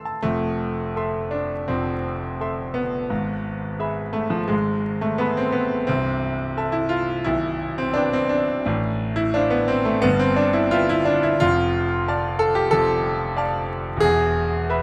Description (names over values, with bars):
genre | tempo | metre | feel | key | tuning
classical, romantic character piece for solo piano | 78-94 BPM | 4/4 | rubato | unclear | A4 = 438 Hz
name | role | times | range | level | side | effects
bright concert grand piano | solo | 0.0-14.8 s | B0 to C7 | -22 LUFS | equal | none
room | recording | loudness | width
light reverb | close, detailed microphones, vinyl crackle | -22 LUFS | mono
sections
0.2-14.8 A section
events
none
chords
0.2 Fmaj7; 3.1 E/G#; 5.9 Am/C; 7.3 G/B; 8.7 F/A; 10.0 Em/G; 11.4 Dm/F; 14.0 E